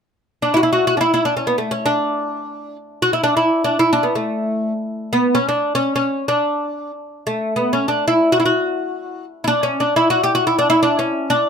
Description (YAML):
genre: Persian modal ensemble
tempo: free time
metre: none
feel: none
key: D dastgah mahur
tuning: A4 = 438 Hz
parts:
  - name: oud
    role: solo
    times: 0.4-11.5 s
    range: A3 to G4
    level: -16 LUFS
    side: equal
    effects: none
room: moderate studio reverb, RT60 0.6 s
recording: close, detailed microphones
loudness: -16 LUFS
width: side -6 dB against mid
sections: 0.2-11.5 A section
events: none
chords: none